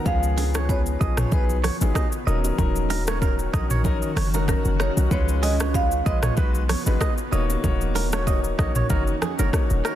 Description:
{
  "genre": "afrobeats",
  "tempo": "95 BPM",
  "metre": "4/4",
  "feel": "swing 55% on 16ths",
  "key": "Eb minor",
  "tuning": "A4 = 441 Hz",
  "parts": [
    { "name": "marimba with medium mallets", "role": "melody", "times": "0.0-7.3 s", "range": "Bb4 to F5", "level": "-30 LUFS", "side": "right 3 dB", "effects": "digital delay" },
    { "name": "warm concert grand piano", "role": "accompaniment", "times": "0.0-10.0 s", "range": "F3 to Db5", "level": "-29 LUFS", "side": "left 5 dB", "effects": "none" },
    { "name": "granular cloud pad", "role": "sustained chords", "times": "0.0-10.0 s", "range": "D#3 to Gb4", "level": "-32 LUFS", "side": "equal", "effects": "built-in reverb" },
    { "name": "warm 808-style bass", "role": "bass", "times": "0.1-9.8 s", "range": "Eb1 to Db2", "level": "-24 LUFS", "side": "equal", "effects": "none" },
    { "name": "afro-pop drum kit", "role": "drums", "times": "0.1-10.0 s", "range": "hi-hat, kick drum, rim click, shaker, toms", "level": "-25 LUFS", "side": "equal", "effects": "soft clipping on snare" },
    { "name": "congas and bongos", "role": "percussion", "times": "0.1-9.7 s", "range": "none", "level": "-33 LUFS", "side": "right 9 dB", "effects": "none" },
    { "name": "direct-recorded clean electric guitar", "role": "riff", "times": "0.4-10.0 s", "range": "Ab4 to Eb5", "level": "-32 LUFS", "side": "right 8 dB", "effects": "digital delay" }
  ],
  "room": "little or no reverb",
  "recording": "dense, heavily limited modern master",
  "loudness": "-20 LUFS",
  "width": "side -12 dB against mid",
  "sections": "0.1-10.0 A section",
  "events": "none",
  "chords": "0.1 Db7; 1.3 B6; 2.3 Ebm7; 5.1 Db7; 6.4 B6; 7.3 Ebm7",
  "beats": "| 0.06 0.69 1.32 1.95 | 2.58 3.22 3.85 4.48 | 5.11 5.74 6.38 7.01 | 7.64 8.27 8.90 9.53"
}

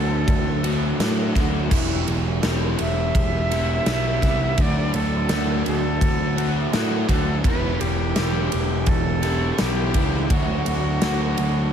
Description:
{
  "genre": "rock, shoegaze and dream pop",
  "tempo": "84 BPM",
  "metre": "4/4",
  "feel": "straight",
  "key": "E minor",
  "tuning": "A4 = 442 Hz",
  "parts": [
    { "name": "bright reedy concert flute", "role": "melody", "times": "0.0-11.7 s", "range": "F#4 to E5", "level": "-28 LUFS", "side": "right 1 dB", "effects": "analog delay" },
    { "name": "overdriven semi-hollow guitar", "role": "riff", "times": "0.0-11.7 s", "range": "D3 to G4", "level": "-24 LUFS", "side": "equal", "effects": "lush chorus" },
    { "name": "fuzz picked electric bass", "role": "bass", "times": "0.0-11.7 s", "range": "E1 to A2", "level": "-24 LUFS", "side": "equal", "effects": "overdrive" },
    { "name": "huge arena drum kit", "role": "drums", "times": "0.3-11.5 s", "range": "crash cymbal, kick drum, ride cymbal, snare drum", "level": "-24 LUFS", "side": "equal", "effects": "none" }
  ],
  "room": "little or no reverb",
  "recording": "none",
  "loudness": "-19 LUFS",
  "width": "side -8 dB against mid",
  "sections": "0.0-11.7 A section",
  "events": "none",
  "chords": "0.0 D; 1.7 Em; 4.6 D; 7.4 Em; 10.3 D",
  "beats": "0.28 0.99 | 1.71 2.43 3.15 3.86 | 4.58 5.29 6.01 6.73 | 7.44 8.16 8.87 9.59 | 10.30 11.02"
}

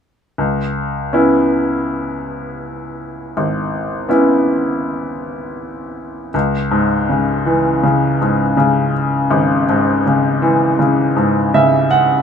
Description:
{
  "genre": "folk",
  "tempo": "81 BPM",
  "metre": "4/4",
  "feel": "straight",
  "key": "C# minor",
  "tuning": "A4 = 439 Hz",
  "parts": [
    { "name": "bright upright piano", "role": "solo", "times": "0.4-12.2 s", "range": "G#1 to F#5", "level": "-14 LUFS", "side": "equal", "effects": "none" }
  ],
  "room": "moderate studio reverb, RT60 0.6 s",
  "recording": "minimal, uncompressed stereo recording",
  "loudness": "-13 LUFS",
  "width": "side -7 dB against mid",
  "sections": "0.4-6.3 A section; 6.3-12.2 B section",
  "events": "none",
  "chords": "0.4 C#m7; 6.3 C#m",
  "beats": "| 0.39 1.14 1.88 2.62 | 3.37 4.11 4.85 5.59 | 6.34 7.08 7.83 8.57 | 9.31 10.06 10.80 11.54"
}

